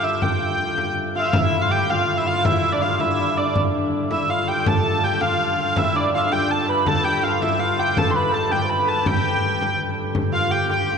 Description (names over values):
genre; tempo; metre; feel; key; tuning
medieval dance; 109 BPM (dotted quarters); 6/8; straight; G mixolydian; A4 = 440 Hz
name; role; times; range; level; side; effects
warm hurdy-gurdy; melody; 0.0-11.0 s; D5 to C6; -21 LUFS; right 1 dB; none
hammered dulcimer; second line; 0.0-11.0 s; D4 to B4; -27 LUFS; right 1 dB; none
pipe organ, flutes; drone; 0.0-11.0 s; G2 to D3; -29 LUFS; left 1 dB; none
frame drum; percussion; 0.2-10.9 s; none; -25 LUFS; equal; none
trumpet with plunger mute; second line; 1.2-11.0 s; D4 to C5; -28 LUFS; left 5 dB; none
room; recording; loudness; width
wet cathedral reverb, RT60 5.1 s; band playing live in one room, nothing above 10.7 kHz; -18 LUFS; side -6 dB against mid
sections
0.0-1.3 A section; 1.3-10.2 A section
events
none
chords
none